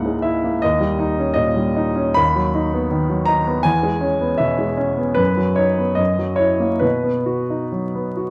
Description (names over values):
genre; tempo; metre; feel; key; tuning
classical, romantic character piece for solo piano; 67-83 BPM; 2/4; rubato; B major; A4 = 440 Hz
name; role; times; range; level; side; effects
clear baby grand piano; solo; 0.0-8.3 s; C#2 to B5; -19 LUFS; equal; none
room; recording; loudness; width
moderate recital hall reverb, RT60 1.6 s; dark, warm production, vinyl crackle; -19 LUFS; mono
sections
0.0-8.3 A section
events
none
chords
0.0 A#m7b5/C#; 0.6 D#7; 2.2 B/D#; 3.7 C#m7/E; 5.2 B/F#; 6.0 F#7; 6.8 B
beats
| 0.63 1.36 | 2.18 2.94 | 3.67 4.42 | 5.19 5.99 | 6.84 7.73